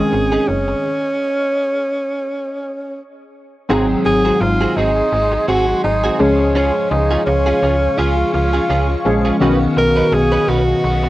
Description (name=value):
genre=pop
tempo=84 BPM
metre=4/4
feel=swing 55% on 16ths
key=Db mixolydian from 3.7 s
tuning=A4 = 440 Hz
part: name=clear tenor saxophone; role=melody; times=0.0-11.1 s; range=Db4 to Bb4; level=-18 LUFS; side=right 1 dB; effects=cassette tape, tape echo
part: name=glassy digital keys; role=accompaniment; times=0.0-11.1 s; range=Eb3 to Ab4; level=-19 LUFS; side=left 1 dB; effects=chorus, cassette tape
part: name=shimmering ambient pad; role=sustained chords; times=0.0-11.1 s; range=Cb4 to Db6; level=-26 LUFS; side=left 1 dB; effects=chorus, built-in reverb, cassette tape
part: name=slap-like FM bass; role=bass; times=0.0-11.1 s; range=Gb1 to Db2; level=-19 LUFS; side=equal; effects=none
part: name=direct-recorded clean electric guitar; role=riff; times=0.1-11.1 s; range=C4 to Cb5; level=-23 LUFS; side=right 3 dB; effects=ensemble chorus, cassette tape
part: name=biting overdriven guitar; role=accompaniment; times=3.7-11.1 s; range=Ab2 to Db4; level=-29 LUFS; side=left 1 dB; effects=ensemble chorus, cassette tape
room=moderate booth ambience, RT60 0.2 s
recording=home recording on cassette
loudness=-14 LUFS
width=side -16 dB against mid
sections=0.0-3.7 A section; 3.7-11.1 B section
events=stop 0.8-3.7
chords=0.0 Absus4; 3.7 Ab7; 6.2 Db; 9.4 Cbadd9